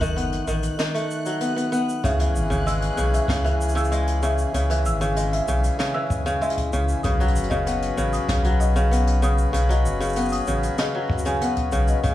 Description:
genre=folktronica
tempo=96 BPM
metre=4/4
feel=straight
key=unclear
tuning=A4 = 440 Hz
part: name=kora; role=arpeggios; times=0.0-12.1 s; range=C#3 to C#4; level=-25 LUFS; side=equal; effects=tape echo
part: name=warm sub bass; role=bass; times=0.0-12.1 s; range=F#1 to C#2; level=-22 LUFS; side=equal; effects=none
part: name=jazz brush drum kit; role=drums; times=0.0-12.1 s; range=hi-hat, shaker, snare drum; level=-34 LUFS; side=left 1 dB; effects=none
part: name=kick drum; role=drums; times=0.0-12.1 s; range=none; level=-28 LUFS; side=equal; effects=none
part: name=backwards swelling texture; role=texture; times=0.0-2.1 s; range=F#6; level=-37 LUFS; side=equal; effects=built-in reverb
part: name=marimba with medium mallets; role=second line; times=2.0-12.0 s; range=D#5 to E6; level=-30 LUFS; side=left 1 dB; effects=tape echo
part: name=pedal harmonium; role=sustained chords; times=2.0-12.1 s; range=E3 to B4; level=-29 LUFS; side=left 3 dB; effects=vintage 12-bit sampler grit
room=light reverb, studio reverb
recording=vinyl crackle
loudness=-20 LUFS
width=side -14 dB against mid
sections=0.0-2.0 A section; 2.0-12.1 B section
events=none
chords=0.0 B7; 2.0 C#m; 7.0 Badd9

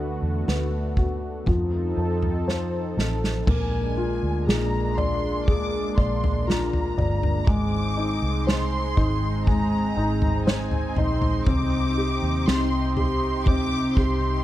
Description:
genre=pop ballad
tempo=60 BPM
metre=4/4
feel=straight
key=unclear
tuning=A4 = 441 Hz
part: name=warm grand piano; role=accompaniment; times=0.0-14.4 s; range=D3 to D5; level=-27 LUFS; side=left 2 dB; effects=none
part: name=lush unison pad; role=sustained chords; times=0.0-14.4 s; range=C3 to A4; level=-30 LUFS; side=right 2 dB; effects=chorus
part: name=vintage muted fingered electric bass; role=bass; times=0.0-14.4 s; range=G1 to F2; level=-27 LUFS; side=equal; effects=none
part: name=unplugged drum kit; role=drums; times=0.5-14.2 s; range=crash cymbal, kick drum, snare drum, toms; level=-25 LUFS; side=equal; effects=none
part: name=warm symphonic violin section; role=second line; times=3.5-14.4 s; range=Ab5 to D6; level=-31 LUFS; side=equal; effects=none
room=little or no reverb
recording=dark, warm production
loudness=-21 LUFS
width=side -14 dB against mid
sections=0.0-3.5 A section; 3.5-14.4 B section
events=drum fill 2.5-3.5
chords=0.0 D6; 1.5 F7; 3.5 Bb7; 7.5 Ab; 11.5 Cm

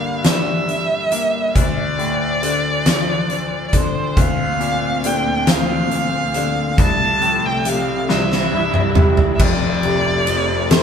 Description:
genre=six-eight pop ballad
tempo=46 BPM (dotted quarters)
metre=6/8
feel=straight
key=F major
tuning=A4 = 442 Hz
part: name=warm violin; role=melody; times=0.0-10.8 s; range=C5 to A5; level=-20 LUFS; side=right 1 dB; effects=digital delay
part: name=bright grand piano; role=accompaniment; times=0.0-10.8 s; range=F1 to D4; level=-21 LUFS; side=left 3 dB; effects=none
part: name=huge arena drum kit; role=drums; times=0.2-10.8 s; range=crash cymbal, hi-hat, kick drum, ride cymbal, snare drum, toms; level=-18 LUFS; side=equal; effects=none
part: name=warm studio string section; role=sustained chords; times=4.2-10.8 s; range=D2 to E4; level=-24 LUFS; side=equal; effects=none
room=moderate stone room reverb, RT60 1.4 s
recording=band playing live in one room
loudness=-15 LUFS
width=side -7 dB against mid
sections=0.0-9.4 A section; 9.4-10.8 B section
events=drum fill 8.1-9.4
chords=0.0 Gm; 1.6 Dm; 4.2 Bbadd9/D; 6.8 F/C; 8.1 C; 9.4 F

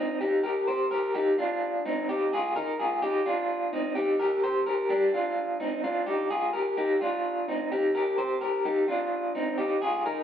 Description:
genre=indie pop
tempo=128 BPM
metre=4/4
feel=straight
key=unclear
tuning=A4 = 439 Hz
part: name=electric guitar through a small old amp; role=solo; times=0.0-10.2 s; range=C4 to C5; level=-25 LUFS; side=equal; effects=tremolo
room=wet stone room reverb, RT60 1.2 s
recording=band playing live in one room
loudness=-25 LUFS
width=side -9 dB against mid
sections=0.0-10.2 A section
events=none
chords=0.0 Cm; 1.1 Ab; 3.0 Ebadd9; 4.9 Bb; 6.8 Cm; 8.6 Ab

